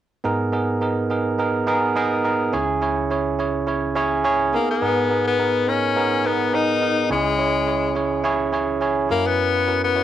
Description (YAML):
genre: pop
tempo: 105 BPM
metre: 4/4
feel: swing 55% on 16ths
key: G# minor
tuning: A4 = 439 Hz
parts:
  - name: bell-like tine electric piano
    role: accompaniment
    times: 0.2-10.0 s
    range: C#2 to C#5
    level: -20 LUFS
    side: right 3 dB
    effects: cassette tape
  - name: edgy tenor saxophone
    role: melody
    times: 4.5-10.0 s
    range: G#3 to D#4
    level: -20 LUFS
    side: left 6 dB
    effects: cassette tape, tape echo
room: wet studio reverb, RT60 0.5 s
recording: home recording on cassette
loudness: -18 LUFS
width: side -11 dB against mid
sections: 0.2-4.8 A section; 4.8-10.0 B section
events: none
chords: 0.2 G#madd9; 2.5 C#m; 4.5 G#madd9; 7.1 C#m; 9.1 F#7